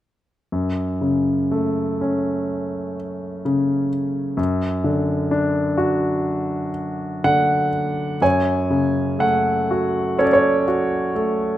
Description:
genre	classical, lyrical solo piano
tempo	59-65 BPM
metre	4/4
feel	rubato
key	F# minor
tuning	A4 = 439 Hz
part	clear concert grand piano	solo	0.5-11.6 s	F#2 to G#5	-18 LUFS	equal	none
room	light reverb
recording	close, detailed microphones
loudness	-18 LUFS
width	side -13 dB against mid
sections	0.5-8.2 A section; 8.2-11.6 B section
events	none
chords	0.5 F#m; 4.4 D/F#; 8.2 F#m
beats	| 0.51 1.52 2.50 3.45 | 4.39 5.32 6.26 7.23 | 8.21 9.20 10.18 11.15

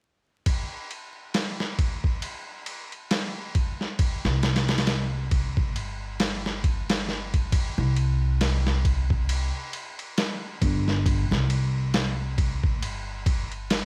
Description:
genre	trip hop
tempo	68 BPM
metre	4/4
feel	swing 58% on 16ths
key	unclear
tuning	A4 = 440 Hz
part	trip hop sampler-style drum kit	drums	0.5-13.8 s	kick drum, ride cymbal, snare drum	-28 LUFS	equal	none
part	upright bass	bass	4.2-13.8 s	G1 to C2	-28 LUFS	equal	none
room	little or no reverb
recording	vinyl crackle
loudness	-26 LUFS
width	mono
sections	0.5-7.5 A section; 7.5-13.8 B section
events	none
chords	none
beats	| 0.47 1.35 2.23 3.11 | 4.00 4.88 5.76 6.64 | 7.53 8.41 9.29 10.17 | 11.05 11.94 12.82 13.70

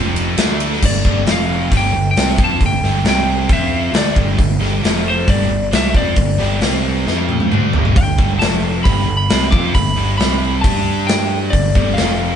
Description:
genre	hard rock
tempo	135 BPM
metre	4/4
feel	straight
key	G mixolydian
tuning	A4 = 441 Hz
part	overdriven electric guitar	riff	0.0-12.4 s	F2 to G4	-20 LUFS	right 2 dB	none
part	fuzz picked electric bass	bass	0.0-12.4 s	F1 to G2	-19 LUFS	equal	overdrive
part	big rock drum kit	drums	0.2-12.1 s	crash cymbal, hi-hat, kick drum, ride cymbal, snare drum, toms	-16 LUFS	equal	none
part	lightly driven lead guitar	melody	0.9-12.4 s	C5 to D6	-21 LUFS	left 1 dB	none
room	moderate stone room reverb, RT60 1.0 s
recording	band playing live in one room, nothing above 10.6 kHz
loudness	-13 LUFS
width	side -8 dB against mid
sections	0.8-12.4 A section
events	drum fill 7.1-8.0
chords	0.4 D5; 0.8 G5; 1.3 F5; 1.7 G5; 3.1 C5; 3.5 F5; 3.9 G5; 4.8 F5; 5.3 G5; 6.6 C5; 7.1 F5; 7.5 G5; 8.4 F5; 8.8 G; 10.2 C5; 10.6 G5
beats	0.38 | 0.82 1.27 1.71 2.16 | 2.61 3.05 3.50 3.94 | 4.39 4.84 5.28 5.73 | 6.17 6.62 7.07 7.51 | 7.96 8.40 8.85 9.29 | 9.74 10.19 10.63 11.07 | 11.52 11.96

